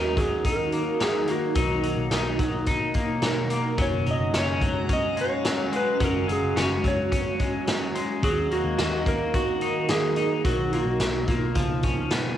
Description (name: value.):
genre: dream pop.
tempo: 108 BPM.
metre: 4/4.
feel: straight.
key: F# major.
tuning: A4 = 441 Hz.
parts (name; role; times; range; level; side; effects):
clean lap steel guitar; melody; 0.0-12.4 s; E#4 to D#5; -28 LUFS; right 1 dB; cassette tape, tape echo.
ethereal airy pad; sustained chords; 0.0-12.4 s; B2 to A#4; -29 LUFS; right 2 dB; ensemble chorus, built-in reverb.
electric guitar at the edge of break-up; arpeggios; 0.0-12.4 s; E#3 to F#4; -29 LUFS; left 3 dB; analog chorus, tape echo.
vintage muted picked electric bass; bass; 0.0-12.1 s; F#1 to D#2; -32 LUFS; equal; none.
raw garage drum kit; drums; 0.2-12.2 s; hi-hat, kick drum, snare drum; -28 LUFS; equal; cassette tape.
drifting glass-harmonics texture; texture; 4.3-9.4 s; D#5 to A#5; -39 LUFS; left 2 dB; chorus, built-in reverb, tape echo.
room: moderate studio reverb, RT60 0.6 s.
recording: home recording on cassette.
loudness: -22 LUFS.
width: side -10 dB against mid.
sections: 0.0-12.4 A section.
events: none.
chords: 0.0 D#m; 1.6 Bmaj7; 3.8 F#sus2; 8.2 D#m; 10.4 Bmaj7; 11.6 C#7.